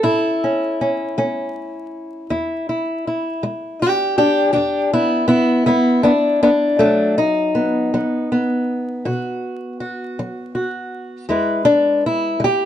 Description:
acoustic country blues, solo or duo; 53 BPM (dotted quarters); 12/8; straight; E major; A4 = 439 Hz
fingerpicked old ladder-braced acoustic guitar; solo; 0.0-12.7 s; E2 to B4; -16 LUFS; left 1 dB
light reverb; close, detailed microphones, vinyl crackle; -16 LUFS; side -10 dB against mid
0.0-11.3 A section; 11.3-12.7 B section
steel-string acoustic guitar solo 11.3-12.7
0.0 A; 2.3 E; 6.8 B; 11.3 E
0.05 1.18 | 2.30 3.43 4.55 5.68 | 6.80 7.92 9.04 10.17 | 11.29 12.40

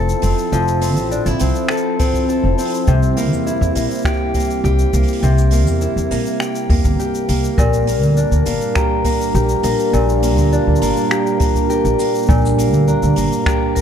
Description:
folktronica; 102 BPM; 4/4; straight; Bb lydian; A4 = 440 Hz
warbly tape-like pad; sustained chords; 0.0-13.8 s; F3 to Bb4; -23 LUFS; right 2 dB; chorus, built-in reverb
fingerpicked acoustic archtop guitar; arpeggios; 0.0-13.8 s; Bb2 to A4; -19 LUFS; equal; ping-pong delay
upright bass; bass; 0.0-13.3 s; F1 to E2; -17 LUFS; equal
jazz brush drum kit; drums; 0.1-13.8 s; finger snaps, hi-hat, shaker; -27 LUFS; equal
kick drum; drums; 2.0-13.8 s; -18 LUFS; equal
vibraphone with medium hard mallets; second line; 7.6-13.8 s; Bb4 to Bb5; -20 LUFS; left 4 dB; tape echo
light reverb, small room reverb; dark, warm production; -14 LUFS; side -8 dB against mid
0.0-13.8 A section
0.0 Fmaj7; 2.9 C7; 7.6 Bb6
| 0.52 1.11 1.70 2.29 | 2.88 3.46 4.05 4.64 | 5.23 5.82 6.40 6.99 | 7.58 8.17 8.76 9.35 | 9.93 10.52 11.11 11.70 | 12.29 12.88 13.46

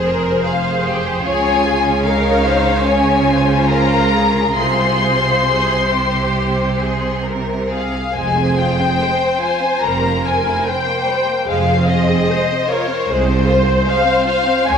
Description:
classical, slow romantic movement for string orchestra; 66-77 BPM; 4/4; rubato; F minor; A4 = 440 Hz
warm symphonic violin section; melody; 0.0-14.8 s; C5 to C6; -18 LUFS; left 4 dB
bright symphonic violin section; second line; 0.0-14.8 s; G3 to Db5; -22 LUFS; left 2 dB
rich symphonic viola section; accompaniment; 0.0-14.8 s; Ab4 to Db5; -21 LUFS; right 2 dB
bright symphonic cello section; bass; 0.0-14.8 s; C2 to Db3; -22 LUFS; right 3 dB
rich symphonic double bass section; bass; 0.0-14.8 s; F1 to Db2; -21 LUFS; right 2 dB
wet concert hall reverb, RT60 2.0 s; dark, warm production; -14 LUFS; side -7 dB against mid
0.0-14.8 A section
0.0 Fm; 1.3 Db; 4.6 Fm/C; 8.2 Fm; 9.8 C7(no3)/F; 11.5 Fm
0.45 | 1.25 2.06 2.87 3.71 | 4.59 5.49 6.38 7.27 | 8.16 9.01 9.84 10.67 | 11.48 12.29 13.09 13.88 | 14.69

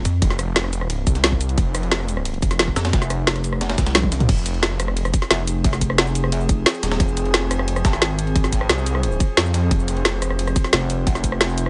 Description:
dark technical drum and bass; 177 BPM; 4/4; straight; F minor; A4 = 441 Hz
detuned saw bass; bass; 0.0-10.5 s; Eb1 to F2; -25 LUFS; equal; chorus, tube saturation, sidechain pumping
pulsing pluck wobble bass; bass; 0.1-0.2, 2.8-8.7, 10.7-11.7 s; F1 to F2; -24 LUFS; equal; chorus
breakbeat sampler-style drum kit; drums; 0.1-11.7 s; ride cymbal, snare drum; -33 LUFS; equal; high-pass filter on cymbals, high-pass filter on snare
drum and bass drum kit; drums; 0.1-11.7 s; cabasa, crash cymbal, hi-hat, rim click, snare drum, toms; -23 LUFS; equal
electronic kick drum; drums; 0.2-11.3 s; -22 LUFS; equal
metallic inharmonic drone; sustained chords; 5.0-11.7 s; F3 to C5; -31 LUFS; equal; chorus, built-in reverb, sidechain pumping
digital ambience; nothing above 10.4 kHz; -20 LUFS; mono
0.0-4.3 A section; 4.3-11.7 A section
drop 0.0-4.3, 4.3-11.7; drum fill 3.9-4.3
0.0 F5; 4.3 Fm
| 0.22 0.56 0.90 1.24 | 1.58 1.92 2.25 2.59 | 2.93 3.27 3.61 3.95 | 4.29 4.63 4.97 5.30 | 5.64 5.98 6.32 6.66 | 7.00 7.34 7.68 8.02 | 8.36 8.70 9.03 9.37 | 9.71 10.05 10.39 10.73 | 11.07 11.41

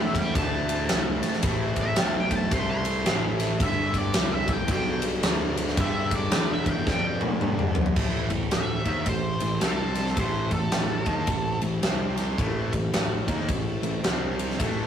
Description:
blues rock power trio and southern rock; 109 BPM; 4/4; swing 62% on 8ths; A minor; A4 = 440 Hz
octave-fuzz lead guitar; melody; 0.0-11.6 s; A4 to C6; -30 LUFS; equal; wah, distortion
bright tonewheel organ; sustained chords; 0.0-14.9 s; G3 to C5; -40 LUFS; right 3 dB
sludgy distorted guitar; riff; 0.0-14.9 s; G2 to D#4; -30 LUFS; equal; overdrive
fuzz picked electric bass; bass; 0.0-14.9 s; G1 to G2; -30 LUFS; equal; overdrive
big rock drum kit; drums; 0.1-14.8 s; crash cymbal, kick drum, ride cymbal, snare drum, toms; -26 LUFS; equal
light reverb; rough rehearsal-room recording, tube saturation; -23 LUFS; side -9 dB against mid
0.0-8.0 A section; 8.0-14.9 B section
lead electric guitar solo 0.0-8.0; drum fill 6.9-8.0
0.0 Am; 3.6 G; 8.0 Am; 9.6 C5; 10.2 Am; 11.8 C5; 12.4 Am; 14.0 C5
0.35 0.89 | 1.43 1.97 2.52 3.06 | 3.60 4.14 4.69 5.23 | 5.78 6.32 6.87 7.42 | 7.97 8.52 9.07 9.62 | 10.17 10.72 11.28 11.83 | 12.38 12.94 13.49 14.04 | 14.59

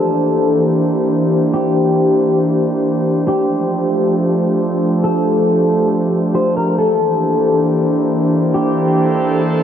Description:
hip hop; free time; A4 = 436 Hz
electric guitar at the edge of break-up; melody; 0.0-9.4 s; G4 to C5; -18 LUFS; left 2 dB; lush chorus, low-pass filter, tape echo
airy breathy pad; sustained chords; 0.0-9.6 s; E3 to C5; -14 LUFS; equal; chorus
moderate huge ambient reverb, RT60 4.8 s; dark, warm production, low-pass filter; -13 LUFS; side -9 dB against mid
0.0-9.6 A section
filter sweep 0.0-9.6
0.0 C9; 3.3 F69; 6.8 C9
free time

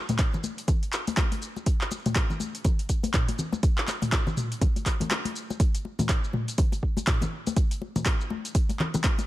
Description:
house; 122 BPM; 4/4; swing 60% on 16ths
afro-pop drum kit; drums; 0.1-9.3 s; handclaps, hi-hat, shaker, toms; -30 LUFS; equal; overdrive
congas; percussion; 0.1-9.3 s; -31 LUFS; left 3 dB
electronic kick drum; drums; 0.2-9.2 s; -24 LUFS; equal; overdrive
little or no reverb; -24 LUFS; side -16 dB against mid
0.0-5.6 A section; 5.6-9.3 B section
break 5.1-5.6; drop 5.6-9.3
0.19 0.68 1.17 | 1.66 2.15 2.65 3.14 | 3.63 4.12 4.61 5.11 | 5.60 6.09 6.58 7.07 | 7.57 8.06 8.55 9.04

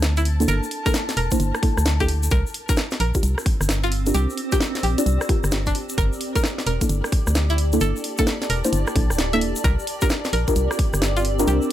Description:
UK garage, two-step garage; 131 BPM; 4/4; swing 64% on 16ths; G dorian; A4 = 441 Hz
deep mellow chord stab; stabs; 0.0-11.7 s; Bb3 to D5; -26 LUFS; equal; chorus, tape echo
organ-like FM bass; bass; 0.0-11.6 s; D1 to D2; -21 LUFS; equal
garage drum kit; drums; 0.0-11.6 s; hi-hat, rim click, snare drum; -26 LUFS; equal; studio reverb
egg shaker; percussion; 0.0-11.7 s; -33 LUFS; left 3 dB
granular cloud pad; texture; 0.0-11.7 s; C4 to A5; -30 LUFS; right 1 dB; built-in reverb, sidechain pumping
string-like resonator pluck; melody; 0.2-11.6 s; D4 to E5; -28 LUFS; equal; chorus, phaser, vintage 12-bit sampler grit, tape echo
electronic kick drum; drums; 0.9-10.9 s; -22 LUFS; equal; studio reverb
digital ambience; -19 LUFS; side -12 dB against mid
0.0-11.7 A section
filter sweep on synth stab 0.0-11.7; kick drops out 9.2-9.6
0.0 Gm69 (rootless); 2.3 C9sus4; 5.8 Gm69; 9.6 C9sus4
0.03 | 0.48 0.94 1.40 1.86 | 2.31 2.77 3.23 3.69 | 4.15 4.61 5.06 5.52 | 5.98 6.44 6.89 7.35 | 7.81 8.27 8.73 9.19 | 9.64 10.10 10.56 11.02 | 11.47

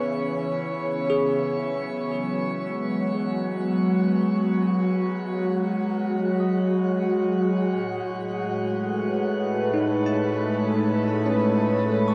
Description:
ambient; free time; F# dorian; A4 = 439 Hz
warbly tape-like pad; sustained chords; 0.0-12.1 s; A2 to C#5; -25 LUFS; equal; chorus, built-in reverb, phaser
barky tine electric piano; arpeggios; 0.0-12.1 s; G#3 to C#6; -34 LUFS; equal; phaser, diffuse ambient delay
wet shimmer reverb, RT60 8.3 s; dark, warm production; -24 LUFS; mono
0.0-1.6 A section; 1.6-12.1 B section
fade-in on tine electric piano 1.6-12.1
0.0 C#m7; 1.6 F#sus2; 7.7 Amaj7
free time

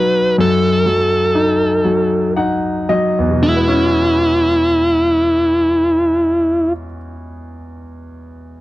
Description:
pop; 36-43 BPM (dotted quarters); 6/8; straight; E major; A4 = 440 Hz
dark smooth lead guitar; melody; 0.0-6.7 s; E4 to B4; -14 LUFS; equal; overdrive
clear concert grand piano; accompaniment; 0.0-8.6 s; E2 to F#5; -18 LUFS; left 1 dB
small room ambience; -12 LUFS; side -17 dB against mid
0.0-3.4 A section; 3.4-6.8 B section
slowing down 0.0-3.4; grand piano fill 1.8-3.4
0.0 B7; 3.4 E6
| 0.39 1.85 | 3.43 5.09

